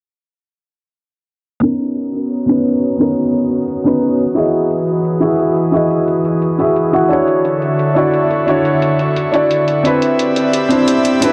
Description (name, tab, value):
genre	liquid drum and bass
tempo	175 BPM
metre	4/4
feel	straight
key	B major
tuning	A4 = 440 Hz
part	felt-muted upright piano	accompaniment	1.6-11.3 s	B3 to F#5	-16 LUFS	equal	low-pass filter, dub echo
part	airy breathy pad	sustained chords	1.6-11.3 s	D3 to D#6	-20 LUFS	equal	chorus
part	electronic hi-hat	drums	1.6-11.3 s	none	-30 LUFS	equal	none
room	moderate spring reverb, RT60 1.9 s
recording	echo-heavy mix, low-pass filter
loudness	-15 LUFS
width	mono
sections	1.6-11.3 A section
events	filter sweep on felt piano 1.6-11.3; filter sweep 1.6-11.3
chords	1.6 Bmaj9; 4.2 Emaj9; 7.1 Dmaj9; 9.8 Cmaj9